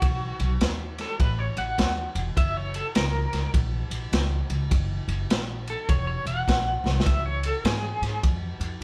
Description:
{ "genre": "electric blues shuffle", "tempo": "102 BPM", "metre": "4/4", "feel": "swing 63% on 8ths", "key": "F# mixolydian", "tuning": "A4 = 442 Hz", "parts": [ { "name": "electric guitar at the edge of break-up", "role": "second line", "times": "0.0-8.2 s", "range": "F#4 to F#5", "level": "-32 LUFS", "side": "equal", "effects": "tremolo" }, { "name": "upright bass", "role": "bass", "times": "0.0-8.8 s", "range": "E1 to G#2", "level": "-30 LUFS", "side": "equal", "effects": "none" }, { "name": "crunchy breakbeat drum kit", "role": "drums", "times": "0.0-8.7 s", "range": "kick drum, ride cymbal, snare drum", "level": "-29 LUFS", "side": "equal", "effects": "none" } ], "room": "light reverb", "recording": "band playing live in one room", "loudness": "-26 LUFS", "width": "mono", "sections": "0.0-8.8 A section", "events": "clean electric guitar solo 0.0-8.8; drum fill 6.8", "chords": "0.0 B7; 2.4 F#7; 7.1 C#" }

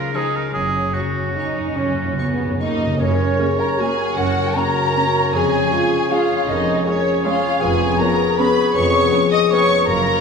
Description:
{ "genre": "classical", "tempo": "139-171 BPM", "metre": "3/4", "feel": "rubato", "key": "F# major", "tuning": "A4 = 440 Hz", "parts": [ { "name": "clear oboe", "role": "second line", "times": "0.0-10.2 s", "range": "F#4 to C#5", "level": "-26 LUFS", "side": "right 3 dB", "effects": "none" }, { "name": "rich symphonic violin section", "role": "second line", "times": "0.0-10.2 s", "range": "C#4 to D#5", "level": "-26 LUFS", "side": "left 1 dB", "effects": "none" }, { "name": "concert harp", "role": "arpeggios", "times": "0.0-10.2 s", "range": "E#2 to B4", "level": "-25 LUFS", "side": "left 5 dB", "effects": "none" }, { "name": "warm symphonic violin section", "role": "melody", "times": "0.1-10.2 s", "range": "C#5 to D#6", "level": "-23 LUFS", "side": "left 2 dB", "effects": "none" }, { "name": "dark symphonic viola section", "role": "accompaniment", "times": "0.2-9.6 s", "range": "E#3 to G#4", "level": "-27 LUFS", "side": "right 2 dB", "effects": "none" }, { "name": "dark symphonic double bass section", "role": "bass", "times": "0.5-10.2 s", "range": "E#1 to F#1", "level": "-29 LUFS", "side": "right 3 dB", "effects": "none" }, { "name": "rich symphonic cello section", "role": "bass", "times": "0.5-10.2 s", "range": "E#2 to F#2", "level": "-29 LUFS", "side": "right 4 dB", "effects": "none" }, { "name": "timpani", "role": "percussion", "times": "0.5-2.9, 9.9-10.2 s", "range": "F#2", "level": "-28 LUFS", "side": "right 1 dB", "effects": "none" }, { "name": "silver concert flute", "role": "second line", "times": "2.6-10.2 s", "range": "C#5 to D#6", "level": "-25 LUFS", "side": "equal", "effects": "none" }, { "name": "clear clarinet", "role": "second line", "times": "3.0-10.2 s", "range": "F#4 to A#4", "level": "-27 LUFS", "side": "left 1 dB", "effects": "none" }, { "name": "mellow bassoon", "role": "accompaniment", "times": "3.0-10.2 s", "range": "A#3 to C#4", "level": "-25 LUFS", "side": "equal", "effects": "none" }, { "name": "mellow French horn section", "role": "sustained chords", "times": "3.0-10.2 s", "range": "E#4 to A#4", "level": "-22 LUFS", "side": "left 4 dB", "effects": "none" } ], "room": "wet recital hall reverb, RT60 1.7 s", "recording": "recorded in a church or concert hall", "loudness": "-16 LUFS", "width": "side -5 dB against mid", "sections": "0.0-3.0 A section; 3.0-10.2 B section", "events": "timpani fill 0.5-3.0", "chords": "0.0 C#7; 0.5 F#; 5.3 C#/E#; 7.6 C#7/E#" }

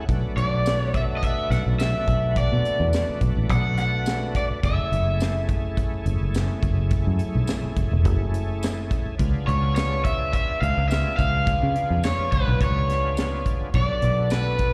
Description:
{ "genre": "straight-eighth soul blues", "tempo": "105 BPM", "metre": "4/4", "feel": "swing 54% on 16ths", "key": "F# minor", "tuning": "A4 = 438 Hz", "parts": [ { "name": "bright tonewheel organ", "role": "accompaniment", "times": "0.0-14.7 s", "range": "A3 to A4", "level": "-35 LUFS", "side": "equal", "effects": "overdrive, chorus vibrato, slow rotary speaker, plate reverb, slapback echo" }, { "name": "fingered electric bass", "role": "bass", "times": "0.1-14.7 s", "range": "E1 to C#3", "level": "-26 LUFS", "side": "equal", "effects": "none" }, { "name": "tight funk drum kit", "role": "drums", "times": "0.1-14.7 s", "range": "hi-hat, kick drum, snare drum, tambourine", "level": "-29 LUFS", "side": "equal", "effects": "none" }, { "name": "overdriven semi-hollow guitar", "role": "melody", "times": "0.4-14.7 s", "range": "B4 to F#5", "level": "-28 LUFS", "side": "equal", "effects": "plate reverb, slapback echo" } ], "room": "light reverb", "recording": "live gig heard through the venue's PA, recital hall reverb", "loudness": "-23 LUFS", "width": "mono", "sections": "0.0-14.7 A section", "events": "none", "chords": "0.1 Bm7; 4.6 F#m7; 9.2 C#7b9; 13.7 Bm7" }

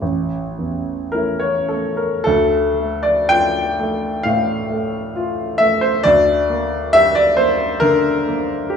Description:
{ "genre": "classical, romantic nocturne for solo piano", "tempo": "51-69 BPM", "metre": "4/4", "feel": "rubato", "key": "D minor", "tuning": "A4 = 441 Hz", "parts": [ { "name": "warm upright piano", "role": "solo", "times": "0.0-8.8 s", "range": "A1 to A5", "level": "-15 LUFS", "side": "left 1 dB", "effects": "none" } ], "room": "moderate scoring stage reverb, RT60 1.7 s", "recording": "small room ambience", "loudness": "-15 LUFS", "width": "side -7 dB against mid", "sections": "0.0-2.3 A section; 2.3-8.8 B section", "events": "none", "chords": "0.0 A; 2.3 Dm; 6.1 Gm/D" }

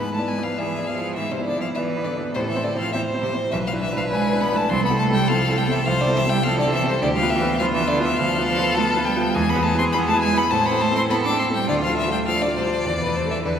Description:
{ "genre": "quick classical-period movement for piano quartet", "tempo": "102 BPM", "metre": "4/4", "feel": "rubato", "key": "A minor", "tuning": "A4 = 440 Hz", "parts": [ { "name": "rich violin", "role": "melody", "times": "0.0-13.6 s", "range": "B4 to D6", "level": "-24 LUFS", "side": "left 3 dB", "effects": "none" }, { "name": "clear cello", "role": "second line", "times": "0.0-13.6 s", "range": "B2 to D4", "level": "-26 LUFS", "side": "right 4 dB", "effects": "none" }, { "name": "clear violin", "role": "second line", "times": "0.0-13.6 s", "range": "E4 to D5", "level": "-27 LUFS", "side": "left 1 dB", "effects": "none" }, { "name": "clear grand piano", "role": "accompaniment", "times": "0.0-13.6 s", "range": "B1 to D5", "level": "-23 LUFS", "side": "equal", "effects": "none" } ], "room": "wet cathedral reverb, RT60 4.3 s", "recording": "recorded in a church or concert hall", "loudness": "-19 LUFS", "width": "side -8 dB against mid", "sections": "0.0-13.6 A section", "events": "none", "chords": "0.0 E7/G#; 2.3 Am; 3.5 E5/B; 4.7 Am/C; 7.0 Bdim/D; 9.4 E; 10.5 Am; 11.7 Dm; 12.9 A5/E" }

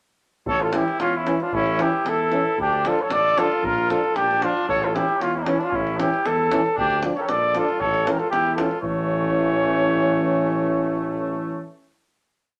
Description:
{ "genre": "balkan folk, Balkan brass band", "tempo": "115 BPM", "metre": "2/4", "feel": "straight", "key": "A phrygian dominant", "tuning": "A4 = 441 Hz", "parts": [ { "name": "clear cornet", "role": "melody", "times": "0.5-11.6 s", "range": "D4 to D5", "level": "-25 LUFS", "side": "equal", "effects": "none" }, { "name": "clear trumpet", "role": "second line", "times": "0.5-11.6 s", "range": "A3 to A4", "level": "-30 LUFS", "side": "equal", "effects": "none" }, { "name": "mellow tuba", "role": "bass", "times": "0.5-11.6 s", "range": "A1 to E2", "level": "-32 LUFS", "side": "equal", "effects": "none" }, { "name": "davul", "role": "percussion", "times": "0.5-9.1 s", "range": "none", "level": "-36 LUFS", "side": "equal", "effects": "none" }, { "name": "clear trombone", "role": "accompaniment", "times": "0.7-11.6 s", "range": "E3 to F3", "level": "-28 LUFS", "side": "equal", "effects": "none" }, { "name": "warm euphonium", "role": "accompaniment", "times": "0.7-11.7 s", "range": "C#4 to D4", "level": "-30 LUFS", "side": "equal", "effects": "none" } ], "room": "wet studio reverb, RT60 0.6 s", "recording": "lossy compression artefacts", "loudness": "-22 LUFS", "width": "mono", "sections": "0.5-8.8 A section; 8.8-10.9 final chord", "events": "none", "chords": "0.5 A; 2.6 Dm; 3.6 Bb; 4.7 A; 6.8 Dm; 7.8 A" }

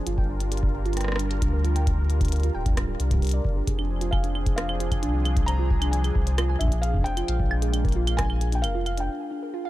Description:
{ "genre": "IDM", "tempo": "133 BPM", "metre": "4/4", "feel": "straight", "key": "unclear", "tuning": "A4 = 439 Hz", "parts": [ { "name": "warm analog pad", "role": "sustained chords", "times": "0.0-9.1 s", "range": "F3 to Bb4", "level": "-35 LUFS", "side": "right 1 dB", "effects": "chorus" }, { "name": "harp-like synth pluck", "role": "arpeggios", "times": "0.0-9.7 s", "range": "D4 to Ab5", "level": "-32 LUFS", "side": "right 3 dB", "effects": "chorus, ping-pong delay" }, { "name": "warm sub bass", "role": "bass", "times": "0.1-9.1 s", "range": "D1 to D2", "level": "-25 LUFS", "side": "equal", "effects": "none" }, { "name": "glitchy drum kit", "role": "drums", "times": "0.1-9.1 s", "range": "claves, hi-hat, rim click", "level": "-33 LUFS", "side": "right 1 dB", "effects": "none" }, { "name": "electronic kick drum", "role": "drums", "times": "0.2-8.3 s", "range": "none", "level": "-25 LUFS", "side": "equal", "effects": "none" }, { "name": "felt-muted upright piano", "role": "melody", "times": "4.1-9.1 s", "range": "E5 to Bb5", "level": "-34 LUFS", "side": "left 1 dB", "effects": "vintage 12-bit sampler grit, ping-pong delay" } ], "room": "little or no reverb", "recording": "dark, warm production", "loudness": "-22 LUFS", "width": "side -16 dB against mid", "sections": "0.0-9.7 A section", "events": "break 9.1-9.7", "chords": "0.1 Gm7; 3.7 Fm6; 7.3 Bb7" }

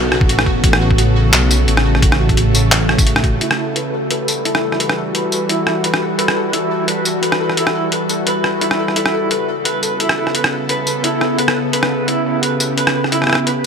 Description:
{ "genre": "half-time drum and bass", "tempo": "173 BPM", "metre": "4/4", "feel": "swing 55% on 16ths, half-time", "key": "E dorian", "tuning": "A4 = 440 Hz", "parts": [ { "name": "bowed-like drone", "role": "sustained chords", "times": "0.0-13.7 s", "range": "C#3 to A4", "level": "-20 LUFS", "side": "equal", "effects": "built-in reverb, sidechain pumping" }, { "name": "dark detuned saw bass", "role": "bass", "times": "0.0-3.4 s", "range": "A1 to B1", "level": "-15 LUFS", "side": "equal", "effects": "tube saturation" }, { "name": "pulsing gated texture", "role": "texture", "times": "0.0-13.7 s", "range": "F#4 to A4", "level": "-24 LUFS", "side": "left 2 dB", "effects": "chorus, built-in reverb" }, { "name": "boom bap sampler-style drum kit", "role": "drums", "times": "0.1-13.5 s", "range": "handclaps, hi-hat, rim click, tambourine", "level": "-17 LUFS", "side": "equal", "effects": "studio ambience" }, { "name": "electronic kick drum", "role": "drums", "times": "0.2-3.3 s", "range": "none", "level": "-15 LUFS", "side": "equal", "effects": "studio ambience" }, { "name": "electric guitar through a small old amp", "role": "arpeggios", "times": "3.4-13.6 s", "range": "E4 to B4", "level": "-21 LUFS", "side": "right 3 dB", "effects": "tremolo, low-pass filter, digital delay" } ], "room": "light reverb", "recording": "none", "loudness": "-13 LUFS", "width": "side -6 dB against mid", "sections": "0.0-3.4 A section; 3.4-13.7 B section", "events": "drop 0.0-3.4; band accent 3.2; filter sweep on clean electric guitar 3.4-13.7", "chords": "0.0 Aadd9; 3.4 Emadd9; 9.0 Aadd9" }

